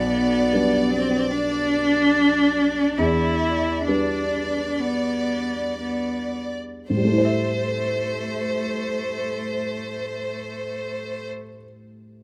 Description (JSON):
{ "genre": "neoclassical piano and strings", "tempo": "54-78 BPM", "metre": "4/4", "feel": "rubato", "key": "A minor", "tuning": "A4 = 437 Hz", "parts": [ { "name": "rich chamber violin section", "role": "melody", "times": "0.0-11.3 s", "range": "C5 to D5", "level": "-30 LUFS", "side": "equal", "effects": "none" }, { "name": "warm cello", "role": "second line", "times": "0.0-11.3 s", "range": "A3 to E4", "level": "-26 LUFS", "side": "equal", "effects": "none" }, { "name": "dark upright piano", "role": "accompaniment", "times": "0.0-12.2 s", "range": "B1 to E5", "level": "-29 LUFS", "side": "equal", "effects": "none" } ], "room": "light reverb", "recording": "none", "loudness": "-23 LUFS", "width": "mono", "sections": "0.0-6.9 A section; 6.9-11.2 B section", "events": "slowing down 0.0-6.9", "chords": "0.0 G/B; 3.0 Em7; 6.9 Am7" }